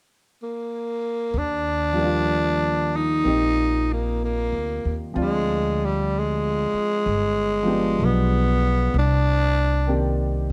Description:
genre	jazz ballad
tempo	63 BPM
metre	4/4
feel	swing 66% on 8ths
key	Eb major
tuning	A4 = 439 Hz
part	growling tenor saxophone	melody	0.4-10.1 s	G3 to Eb4	-25 LUFS	equal	plate reverb
part	upright bass	bass	1.3-10.5 s	G1 to Eb2	-26 LUFS	equal	none
part	clear upright piano	accompaniment	1.9-10.5 s	Eb3 to D5	-29 LUFS	equal	none
room	light reverb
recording	none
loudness	-22 LUFS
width	mono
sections	0.0-1.3 A section; 1.3-10.5 B section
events	none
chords	0.0 N.C.; 1.3 Ebmaj9; 5.2 Dm7b5; 7.0 G7b9; 8.9 Cm9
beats	0.38 | 1.33 2.29 3.24 4.20 | 5.15 6.11 7.05 7.99 | 8.93 9.87

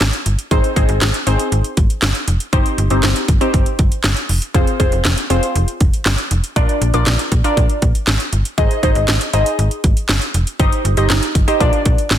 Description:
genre	synth-pop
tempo	119 BPM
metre	4/4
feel	straight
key	unclear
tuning	A4 = 440 Hz
part	warbly dusty pluck	accompaniment	0.0-12.2 s	C4 to Eb5	-19 LUFS	equal	chorus, phaser
part	slap-like FM bass	bass	0.0-12.2 s	F1 to Bb1	-17 LUFS	equal	none
part	house drum kit	drums	0.0-12.2 s	handclaps, hi-hat, kick drum, snare drum	-16 LUFS	equal	none
room	light reverb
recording	dense, heavily limited modern master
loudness	-13 LUFS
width	side -11 dB against mid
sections	0.0-12.2 A section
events	none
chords	0.0 N.C.; 0.5 Ab; 2.5 Cm/G; 4.5 Fm; 6.6 Bb; 8.6 Ab; 10.6 Cm/G; 11.6 Bb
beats	0.01 | 0.51 1.01 1.52 2.02 | 2.53 3.03 3.54 4.04 | 4.54 5.05 5.55 6.06 | 6.56 7.07 7.57 8.07 | 8.58 9.08 9.59 10.09 | 10.60 11.10 11.60 12.11

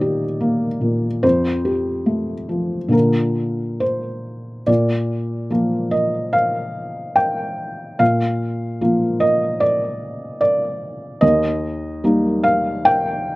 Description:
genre	neoclassical minimalist piano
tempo	73 BPM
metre	4/4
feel	rubato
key	Bb major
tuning	A4 = 438 Hz
part	felt-muted upright piano	solo	0.0-13.4 s	Eb2 to G5	-17 LUFS	equal	slapback echo
room	little or no reverb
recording	recorded outdoors, with no room sound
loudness	-17 LUFS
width	side -20 dB against mid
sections	0.0-4.7 A section; 4.7-13.4 B section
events	none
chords	0.0 Eb; 1.2 Fadd9; 2.9 Bb; 11.2 Eb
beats	0.41 | 1.24 2.07 2.93 3.81 | 4.68 5.52 6.36 7.18 | 8.01 8.82 9.63 10.42 | 11.22 12.04 12.87

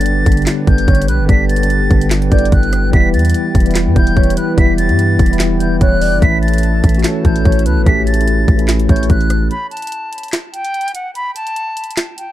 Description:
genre	hip hop, trap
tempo	146 BPM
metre	4/4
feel	half-time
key	unclear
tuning	A4 = 440 Hz
part	bright concert flute	melody	0.0-12.3 s	F#5 to B6	-21 LUFS	equal	digital delay
part	mellow tine electric piano	accompaniment	0.0-9.5 s	D3 to G4	-17 LUFS	left 1 dB	medium stereo tremolo
part	hollow soft pad	sustained chords	0.0-9.5 s	D3 to A5	-27 LUFS	equal	chorus
part	warm 808-style bass	bass	0.0-9.5 s	E1 to G2	-15 LUFS	equal	none
part	trap drum kit	drums	0.0-12.3 s	handclaps, hi-hat, kick drum, rim click, snare drum	-14 LUFS	equal	none
part	soft octave-layered synth lead	second line	0.9-9.1 s	B4 to D5	-24 LUFS	equal	chorus, phaser, digital delay
room	little or no reverb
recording	dark, warm production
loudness	-11 LUFS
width	side -13 dB against mid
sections	0.0-9.5 A section; 9.5-12.3 B section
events	break 9.5-12.3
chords	0.0 G; 2.9 Em; 6.2 A; 9.5 N.C.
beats	0.06 0.47 0.88 | 1.29 1.70 2.11 2.52 | 2.93 3.34 3.75 4.17 | 4.58 4.99 5.40 5.81 | 6.22 6.63 7.04 7.45 | 7.86 8.28 8.69 9.10 | 9.51 9.92 10.33 10.74 | 11.15 11.56 11.97

